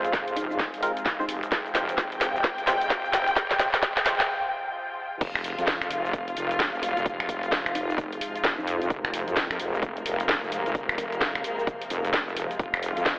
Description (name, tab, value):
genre	bass house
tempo	130 BPM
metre	4/4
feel	swing 62% on 16ths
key	F minor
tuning	A4 = 440 Hz
part	dark symphonic string section	sustained chords	0.0-13.2 s	C3 to G5	-30 LUFS	left 1 dB	sidechain pumping
part	percussive organ stab	stabs	0.0-4.1 s	Ab3 to C5	-32 LUFS	right 1 dB	chorus, vintage 12-bit sampler grit, sidechain pumping, dub echo
part	wobble bass	bass	0.0-13.2 s	Eb1 to F2	-32 LUFS	equal	chorus, tube saturation, sidechain pumping, high-pass filter
part	house drum kit	drums	0.0-13.2 s	crash cymbal, finger snaps, hi-hat, shaker, snare drum	-27 LUFS	equal	none
part	granular cloud pad	texture	0.0-4.3 s	C4 to F5	-37 LUFS	equal	none
part	electronic kick drum	drums	0.1-13.2 s	none	-30 LUFS	equal	none
part	kalimba	melody	0.4-1.7, 6.8-9.0 s	Eb4 to F4	-39 LUFS	equal	dub echo
part	swell	sound effects	4.5-5.2 s	none	-42 LUFS	equal	none
room	moderate lush hall reverb, RT60 2.3 s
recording	high-pass filter, telephone sound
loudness	-24 LUFS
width	side -24 dB against mid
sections	0.0-5.2 A section; 5.2-13.2 B section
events	build-up 0.0-5.2; drum fill 0.0-4.3; break 4.3-5.2; swell 4.5-5.2; drop 5.2-13.2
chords	0.0 Fm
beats	0.13 0.59 1.06 | 1.52 1.98 2.44 2.90 | 3.36 3.83 4.29 4.75 | 5.21 5.67 6.13 6.59 | 7.06 7.52 7.98 8.44 | 8.90 9.36 9.83 10.29 | 10.75 11.21 11.67 12.13 | 12.60 13.06